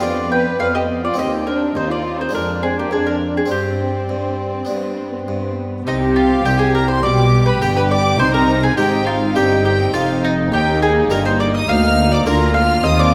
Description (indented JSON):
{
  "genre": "classical, baroque-style concerto movement with solo episodes",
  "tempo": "103 BPM",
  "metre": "4/4",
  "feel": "straight",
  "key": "C minor",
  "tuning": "A4 = 440 Hz",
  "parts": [
    { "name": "mandolin", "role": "melody", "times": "0.0-13.1 s", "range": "Eb4 to G5", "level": "-22 LUFS", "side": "equal", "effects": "none" },
    { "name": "rich chamber violin section", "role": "melody", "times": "0.0-13.1 s", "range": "D5 to F6", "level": "-27 LUFS", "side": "equal", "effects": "none" },
    { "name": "rich symphonic violin section", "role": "second line", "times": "0.0-13.1 s", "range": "Bb3 to B4", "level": "-24 LUFS", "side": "equal", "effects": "none" },
    { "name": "dark studio viola section", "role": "accompaniment", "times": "0.0-13.1 s", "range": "G3 to D4", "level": "-27 LUFS", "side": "equal", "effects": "none" },
    { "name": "harpsichord", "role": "accompaniment", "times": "0.0-13.1 s", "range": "C2 to Bb4", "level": "-28 LUFS", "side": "equal", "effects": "none" },
    { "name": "rich chamber cello section", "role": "bass", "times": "0.0-13.1 s", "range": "C2 to D3", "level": "-24 LUFS", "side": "equal", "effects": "none" },
    { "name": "rich studio double bass section", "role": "bass", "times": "5.9-13.1 s", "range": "F1 to Eb2", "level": "-23 LUFS", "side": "equal", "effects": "none" }
  ],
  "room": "moderate scoring stage reverb, RT60 2.2 s",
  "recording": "none",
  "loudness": "-17 LUFS",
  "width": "mono",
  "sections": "0.0-5.9 A section; 5.9-13.1 B section",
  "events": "none",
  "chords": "0.0 G7/F; 1.2 Cm/Eb; 2.3 Ddim/F; 3.5 Gsus4; 4.7 G; 5.9 Cm; 7.0 G/B; 8.2 Cm; 10.5 Eb; 11.7 Bb/D",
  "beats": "0.02 0.60 | 1.18 1.75 2.34 2.92 | 3.51 4.10 4.69 5.28 | 5.87 6.45 7.04 7.62 | 8.20 8.78 9.36 9.94 | 10.52 11.10 11.68 12.27 | 12.85"
}